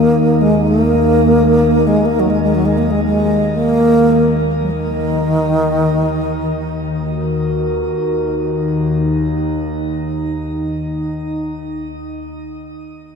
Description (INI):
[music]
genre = world meditative, free-time meditation music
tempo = free time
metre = none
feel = none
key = Eb minor pentatonic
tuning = A4 = 440 Hz
[part]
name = breathy bass flute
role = melody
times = 0.0-6.8 s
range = Eb3 to Bb3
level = -14 LUFS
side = equal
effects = shimmer reverb
[part]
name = warbly tape-like pad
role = drone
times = 0.0-11.6 s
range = Eb2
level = -20 LUFS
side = left 2 dB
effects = chorus, built-in reverb
[part]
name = glass harmonica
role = texture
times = 0.0-11.6 s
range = Eb4 to Bb4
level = -23 LUFS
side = right 1 dB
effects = shimmer reverb
[sound]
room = wet cathedral reverb, RT60 5.1 s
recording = in a vast, echoing space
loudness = -13 LUFS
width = side -6 dB against mid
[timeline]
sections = 0.0-7.8 A section; 7.8-12.1 B section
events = none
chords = none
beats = free time